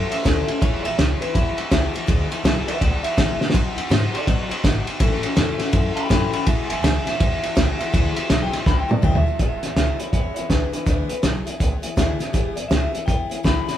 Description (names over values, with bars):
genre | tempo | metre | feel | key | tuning
rockabilly | 164 BPM | 4/4 | swing 63% on 8ths | E mixolydian | A4 = 443 Hz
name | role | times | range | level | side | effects
electric guitar through a small old amp | melody | 0.0-13.8 s | D4 to B5 | -27 LUFS | equal | none
picked steel-string acoustic guitar | accompaniment | 0.0-13.8 s | E2 to F#4 | -28 LUFS | left 4 dB | none
upright bass | bass | 0.0-13.7 s | E1 to B2 | -25 LUFS | equal | none
cloth-damped thuddy drum kit | drums | 0.1-13.7 s | hi-hat, kick drum, ride cymbal, snare drum, toms | -20 LUFS | equal | none
room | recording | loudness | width
light reverb | band playing live in one room | -18 LUFS | side -11 dB against mid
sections
0.0-9.4 A section; 9.4-13.8 B section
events
clean electric guitar solo 0.0-9.4; drum fill 3.4, 8.7-9.4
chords
0.0 A; 0.6 E; 3.5 B; 5.0 A; 6.5 E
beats
0.26 | 0.62 0.98 1.35 1.72 | 2.08 2.45 2.81 3.18 | 3.54 3.91 4.27 4.64 | 5.01 5.37 5.74 6.10 | 6.47 6.83 7.20 7.57 | 7.93 8.30 8.66 9.03 | 9.40 9.77 10.13 10.50 | 10.87 11.23 11.60 11.97 | 12.34 12.70 13.07 13.44